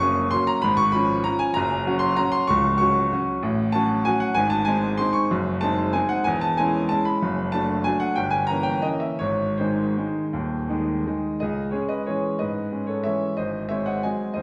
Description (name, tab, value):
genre	classical, piano waltz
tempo	155-202 BPM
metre	3/4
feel	rubato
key	C# minor from 3.4 s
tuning	A4 = 440 Hz
part	clear upright piano	solo	0.0-14.4 s	Db1 to Eb6	-23 LUFS	equal	none
room	wet recital hall reverb, RT60 1.5 s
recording	heard from further back in the room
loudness	-23 LUFS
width	mono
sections	0.0-11.4 A section; 11.4-14.4 B section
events	none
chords	0.0 Gb; 0.6 Db7/Ab; 1.6 Gb; 3.4 F#m/A; 4.4 G#; 5.3 G#7/F#; 6.3 C#m/E; 7.2 D/F#; 8.2 Gdim7; 9.2 G#; 11.4 C#m; 13.4 G#7